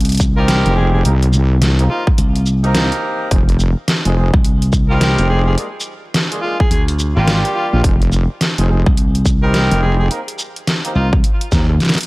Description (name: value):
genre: glitch hop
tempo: 106 BPM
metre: 4/4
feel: swing 62% on 16ths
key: F dorian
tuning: A4 = 440 Hz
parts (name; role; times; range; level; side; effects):
- slap bass; bass; 0.0-11.2 s; Ab1 to D2; -15 LUFS; equal; none
- dubstep drum kit; drums; 0.0-12.1 s; hi-hat, rim click, shaker, snare drum; -19 LUFS; equal; overdrive
- electronic kick drum; drums; 0.2-11.7 s; none; -15 LUFS; equal; overdrive
- overdriven harmonica; melody; 0.4-11.1 s; Bb3 to Bb4; -24 LUFS; equal; tape echo
- mellow horn section; stabs; 0.4-11.7 s; G3 to Bb4; -23 LUFS; equal; sidechain pumping, tape echo
- wobble bass; bass; 0.7-11.8 s; F1 to Eb2; -13 LUFS; equal; chorus, overdrive
room: digital ambience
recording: dry, gritty hardware recording, transformer saturation, vinyl crackle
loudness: -12 LUFS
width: side -22 dB against mid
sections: 0.0-12.1 A section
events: none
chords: 0.0 F7(no3); 1.1 Cm7; 3.3 Fm7; 5.6 Bb7; 7.8 Fm7; 10.1 Cm7